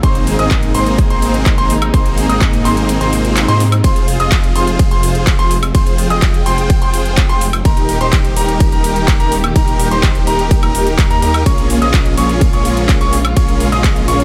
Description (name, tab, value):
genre	EDM, festival progressive house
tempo	126 BPM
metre	4/4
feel	straight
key	F minor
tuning	A4 = 444 Hz
part	dark symphonic string section	sustained chords	0.0-14.2 s	C3 to G5	-24 LUFS	equal	sidechain pumping
part	bright grand piano	arpeggios	0.0-14.2 s	Bb5 to Eb6	-23 LUFS	equal	sidechain pumping, tape echo
part	supersaw chords	riff	0.0-14.2 s	Bb3 to Eb5	-22 LUFS	equal	lush chorus, sidechain pumping, tape echo
part	detuned saw bass	bass	0.0-14.2 s	Eb1 to Ab2	-20 LUFS	equal	chorus, sidechain pumping
part	big-room dance drum kit	drums	0.0-14.2 s	handclaps, hi-hat, ride cymbal, woodblock	-24 LUFS	equal	overdrive
part	electronic kick drum	drums	0.0-13.9 s	none	-16 LUFS	equal	overdrive
part	swell	sound effects	3.1-3.8 s	none	-31 LUFS	equal	none
room	light reverb, digital ambience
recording	none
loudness	-13 LUFS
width	mono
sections	0.0-14.2 A section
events	kick drops out 2.9-3.8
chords	0.0 Abadd9; 3.8 Fm; 7.7 Eb; 11.5 Bbm7